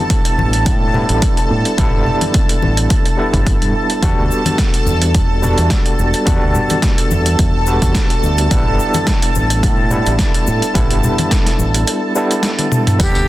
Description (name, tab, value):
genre	nu-disco, nu disco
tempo	107 BPM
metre	4/4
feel	swing 54% on 16ths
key	unclear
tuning	A4 = 443 Hz
part	overdriven tine electric piano	accompaniment	0.0-13.3 s	G3 to F#5	-19 LUFS	equal	fast tremolo, sidechain pumping, digital delay
part	lush unison pad	sustained chords	0.0-13.3 s	D4 to E6	-22 LUFS	equal	chorus, phaser, sidechain pumping
part	dusty soul sampler-style drum kit	drums	0.1-13.3 s	hi-hat, snare drum, tambourine, toms	-20 LUFS	equal	overdrive, small room ambience
part	electronic kick drum	drums	0.1-13.1 s	none	-16 LUFS	equal	overdrive, small room ambience
part	fingered electric bass with an envelope filter	bass	0.4-13.3 s	E1 to A2	-17 LUFS	equal	none
part	congas and cabasa	percussion	0.4-13.1 s	none	-22 LUFS	left 2 dB	none
part	breathy bright jazz flute	melody	13.0-13.3 s	G4	-18 LUFS	right 1 dB	none
room	little or no reverb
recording	dense, heavily limited modern master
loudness	-12 LUFS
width	side -15 dB against mid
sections	0.0-13.3 A section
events	kick drops out 11.9-13.0; drum fill 12.6-13.0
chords	0.0 A7sus4; 4.0 Em11; 8.5 A7sus4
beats	0.10 0.66 1.22 | 1.78 2.35 2.91 3.47 | 4.03 4.59 5.15 5.71 | 6.27 6.83 7.39 7.95 | 8.51 9.07 9.63 10.20 | 10.76 11.32 11.88 12.44 | 13.00